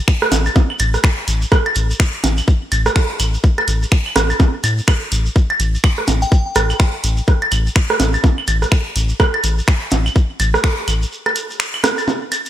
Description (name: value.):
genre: minimal techno.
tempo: 125 BPM.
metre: 4/4.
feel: swing 60% on 16ths.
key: unclear.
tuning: A4 = 439 Hz.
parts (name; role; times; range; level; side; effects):
electronic kick drum; drums; 0.1-10.8 s; none; -13 LUFS; equal; overdrive.
garage drum kit; drums; 0.1-12.5 s; finger snaps, hi-hat; -22 LUFS; equal; overdrive, gated reverb.
shekere; percussion; 0.1-12.5 s; none; -28 LUFS; right 1 dB; none.
electronic rim click, percussion blips and claves; percussion; 0.2-12.4 s; none; -19 LUFS; right 2 dB; gated reverb.
round analog bass; bass; 0.3-11.0 s; A1 to A2; -17 LUFS; equal; sidechain pumping.
glassy synth bell; melody; 6.2-6.6 s; G5; -26 LUFS; left 3 dB; chorus, digital delay.
room: little or no reverb.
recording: bright 1980s-style digital production.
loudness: -14 LUFS.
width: side -12 dB against mid.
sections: 0.0-12.5 A section.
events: break 11.1-12.5.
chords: none.